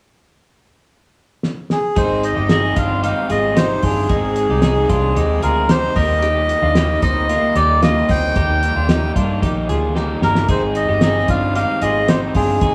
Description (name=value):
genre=jangly indie pop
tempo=113 BPM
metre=4/4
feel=straight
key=unclear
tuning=A4 = 438 Hz
part: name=cloth-damped thuddy drum kit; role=drums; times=1.4-12.7 s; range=hi-hat, kick drum, snare drum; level=-22 LUFS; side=equal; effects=none
part: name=melodica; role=melody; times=1.7-12.7 s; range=Ab4 to G5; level=-21 LUFS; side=equal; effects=none
part: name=raw garage guitar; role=accompaniment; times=2.0-12.7 s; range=Ab2 to Eb4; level=-26 LUFS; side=equal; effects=overdrive
part: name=twelve-string electric guitar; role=arpeggios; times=2.0-12.7 s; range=Bb3 to Bb4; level=-25 LUFS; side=equal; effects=none
part: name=vintage muted fingered electric bass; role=bass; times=2.0-12.7 s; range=G1 to G2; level=-23 LUFS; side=equal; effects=none
room=wet studio reverb, RT60 0.9 s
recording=band playing live in one room, small room ambience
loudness=-17 LUFS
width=mono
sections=0.0-2.0 A section; 2.0-12.7 B section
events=drum fill 1.4-2.0, 10.0-10.5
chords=0.0 N.C.; 2.0 Abmaj7; 6.0 Eb; 10.5 Abmaj7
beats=0.37 0.91 1.44 | 1.97 2.50 3.04 3.57 | 4.10 4.63 5.17 5.70 | 6.23 6.76 7.29 7.83 | 8.36 8.89 9.43 9.96 | 10.49 11.02 11.55 12.09 | 12.62